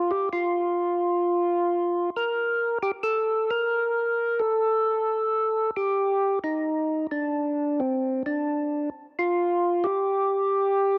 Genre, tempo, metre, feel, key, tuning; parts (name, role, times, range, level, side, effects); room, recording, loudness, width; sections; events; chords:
jazz; 88 BPM; 4/4; swing 69% on 8ths; G minor; A4 = 441 Hz
percussive tonewheel organ; solo; 0.0-11.0 s; C4 to Bb4; -25 LUFS; equal; slow rotary speaker, overdrive, cassette tape
light reverb; home recording on cassette; -25 LUFS; mono
0.0-11.0 A section